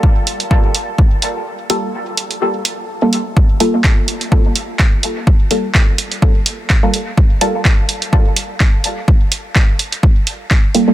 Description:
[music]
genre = dub techno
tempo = 126 BPM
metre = 4/4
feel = swing 55% on 16ths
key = G minor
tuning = A4 = 442 Hz
[part]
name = electronic kick drum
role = drums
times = 0.0-10.6 s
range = none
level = -11 LUFS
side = equal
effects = none
[part]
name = punchy analog drum machine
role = drums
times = 0.3-10.9 s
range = handclaps, hi-hat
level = -18 LUFS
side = right 2 dB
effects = dub echo
[part]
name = filtered dub chord stab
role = stabs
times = 1.7-7.6, 10.7-10.9 s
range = G3 to A4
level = -19 LUFS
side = equal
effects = chorus, phaser, sidechain pumping, dub echo
[sound]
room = light reverb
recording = dense, heavily limited modern master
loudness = -12 LUFS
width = side -14 dB against mid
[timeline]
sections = 0.0-10.9 A section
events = filter sweep on synth stab 0.0-10.9; break 1.5-3.4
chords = 0.0 Gm9

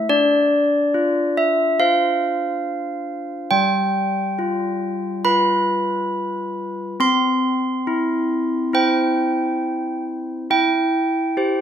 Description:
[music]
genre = classical, tune for handbells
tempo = 69 BPM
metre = 4/4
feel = straight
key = C major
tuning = A4 = 437 Hz
[part]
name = handbells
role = solo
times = 0.0-11.6 s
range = G3 to C6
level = -18 LUFS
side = equal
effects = none
[sound]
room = wet recital hall reverb, RT60 1.4 s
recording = none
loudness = -18 LUFS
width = side -9 dB against mid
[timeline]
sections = 0.0-11.6 A section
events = none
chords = 0.1 Dm7; 3.5 G7; 7.0 C; 10.5 C/E

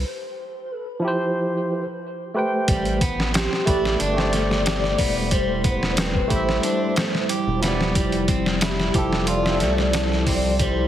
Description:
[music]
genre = trip hop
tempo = 91 BPM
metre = 4/4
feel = straight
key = A minor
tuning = A4 = 437 Hz
[part]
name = pure breathy sine lead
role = melody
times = 0.0-10.9 s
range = G4 to D5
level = -28 LUFS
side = equal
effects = phaser, ensemble chorus, cassette tape, dub echo
[part]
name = round analog bass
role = bass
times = 0.0-10.9 s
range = E1 to C2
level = -26 LUFS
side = equal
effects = tube saturation
[part]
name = barky tine electric piano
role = accompaniment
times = 1.0-10.9 s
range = F3 to G5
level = -25 LUFS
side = equal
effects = harmonic tremolo, tape echo
[part]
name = dark analog pad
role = sustained chords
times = 2.7-10.9 s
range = G3 to E4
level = -29 LUFS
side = left 1 dB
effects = chorus
[part]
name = electric guitar at the edge of break-up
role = arpeggios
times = 2.7-10.9 s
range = G3 to A4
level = -28 LUFS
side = right 2 dB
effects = tape echo
[part]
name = trip hop sampler-style drum kit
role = drums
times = 2.7-10.8 s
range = hi-hat, kick drum, snare drum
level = -23 LUFS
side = equal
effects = none
[sound]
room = little or no reverb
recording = heavily compressed radio sound, multiband compression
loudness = -19 LUFS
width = side -11 dB against mid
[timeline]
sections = 0.0-2.7 A section; 2.7-10.9 B section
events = break 0.0-2.7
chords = 0.0 Fmaj9; 2.7 Am11; 8.0 Fmaj9

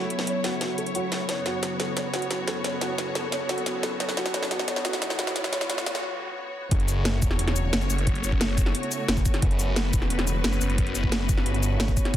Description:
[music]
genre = dark technical drum and bass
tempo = 177 BPM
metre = 4/4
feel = straight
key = F# minor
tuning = A4 = 441 Hz
[part]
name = rich studio string section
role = sustained chords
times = 0.0-12.2 s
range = F#2 to C#5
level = -33 LUFS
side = left 1 dB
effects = sidechain pumping
[part]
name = warbly tape-like pad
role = texture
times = 0.0-12.2 s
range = F#3 to C#5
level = -34 LUFS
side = equal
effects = chorus, built-in reverb, sidechain pumping
[part]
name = drum and bass drum kit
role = drums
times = 0.1-12.2 s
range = hi-hat, shaker, snare drum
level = -28 LUFS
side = equal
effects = soft clipping on snare, high-pass filter on snare, high-pass filter on hats, high-pass filter on perc, high-pass filter on room
[part]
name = felt-muted upright piano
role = arpeggios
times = 0.3-6.0 s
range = F#4 to C#5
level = -31 LUFS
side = right 2 dB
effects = sidechain pumping, low-pass filter, digital delay
[part]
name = riser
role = sound effects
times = 3.0-6.0 s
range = none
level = -38 LUFS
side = equal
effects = none
[part]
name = phased detuned saw bass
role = bass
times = 6.7-12.2 s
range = E1 to G1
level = -26 LUFS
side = equal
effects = phaser, tube saturation
[part]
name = electronic kick drum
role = drums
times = 6.7-12.2 s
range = none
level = -24 LUFS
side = equal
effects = overdrive
[sound]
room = light reverb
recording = dense, heavily limited modern master, high-pass filter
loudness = -23 LUFS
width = side -12 dB against mid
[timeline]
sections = 0.0-6.7 A section; 6.7-12.2 B section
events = build-up 0.0-6.7; drum fill 0.0-6.0; riser 3.0-6.0; break 6.0-6.7; drop 6.7-12.2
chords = 0.0 F#m; 1.3 Bsus2/F#; 6.7 F#m

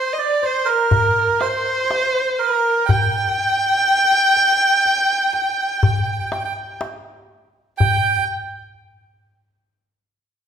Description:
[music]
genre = Arabic maqam ensemble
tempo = 122 BPM (eighths)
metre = 10/8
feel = straight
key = G minor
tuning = A4 = 441 Hz
[part]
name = dark violin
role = melody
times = 0.0-8.3 s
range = Bb4 to G5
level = -18 LUFS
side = equal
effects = none
[part]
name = melodica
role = second line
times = 0.0-8.2 s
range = Bb4 to G5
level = -22 LUFS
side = right 6 dB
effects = none
[part]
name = darbuka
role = percussion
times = 0.4-8.3 s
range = none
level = -20 LUFS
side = left 3 dB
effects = none
[sound]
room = wet recital hall reverb, RT60 1.4 s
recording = minimal, uncompressed stereo recording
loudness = -15 LUFS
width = side -8 dB against mid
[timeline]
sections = 0.0-7.8 A section; 7.8-10.5 B section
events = none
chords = none

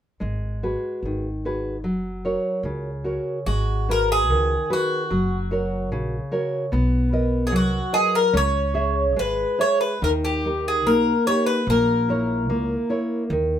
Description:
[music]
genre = fado-style ballad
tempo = 74 BPM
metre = 2/4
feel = rubato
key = G# minor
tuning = A4 = 442 Hz
[part]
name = nylon-string guitar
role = accompaniment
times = 0.2-13.6 s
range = C#3 to E5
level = -24 LUFS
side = equal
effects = none
[part]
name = upright bass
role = bass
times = 0.2-13.6 s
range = F#1 to D#2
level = -26 LUFS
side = equal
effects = none
[part]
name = Greek bouzouki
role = melody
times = 3.5-12.9 s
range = F#4 to C#5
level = -22 LUFS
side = left 1 dB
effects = none
[sound]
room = light reverb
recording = minimal, uncompressed stereo recording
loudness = -20 LUFS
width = side -10 dB against mid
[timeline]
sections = 0.2-3.5 A section; 3.5-13.6 B section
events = none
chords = 0.2 G#m7; 1.8 F#; 3.5 G#m7; 5.1 F#; 6.7 Bmaj7; 8.3 C#m; 10.0 D#; 11.7 A#dim

